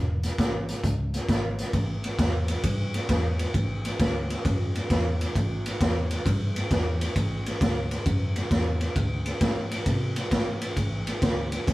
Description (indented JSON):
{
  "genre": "electric blues shuffle",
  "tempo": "133 BPM",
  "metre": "4/4",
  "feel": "swing 66% on 8ths",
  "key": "unclear",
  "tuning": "A4 = 440 Hz",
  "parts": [
    { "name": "vintage muted fingered electric bass", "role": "bass", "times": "0.0-11.7 s", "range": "E1 to C3", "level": "-30 LUFS", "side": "equal", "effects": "none" },
    { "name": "raw garage drum kit", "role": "drums", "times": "0.2-11.7 s", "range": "hi-hat, kick drum, ride cymbal, snare drum", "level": "-25 LUFS", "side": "equal", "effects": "none" }
  ],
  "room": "light reverb",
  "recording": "band playing live in one room",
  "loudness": "-24 LUFS",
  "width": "side -18 dB against mid",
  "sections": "0.0-1.7 A section; 1.7-11.7 A section",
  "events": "none",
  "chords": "none",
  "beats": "0.38 0.83 1.29 | 1.74 2.19 2.64 3.10 | 3.55 4.00 4.45 4.90 | 5.35 5.80 6.26 6.71 | 7.16 7.61 8.06 8.51 | 8.96 9.42 9.87 10.32 | 10.77 11.22 11.67"
}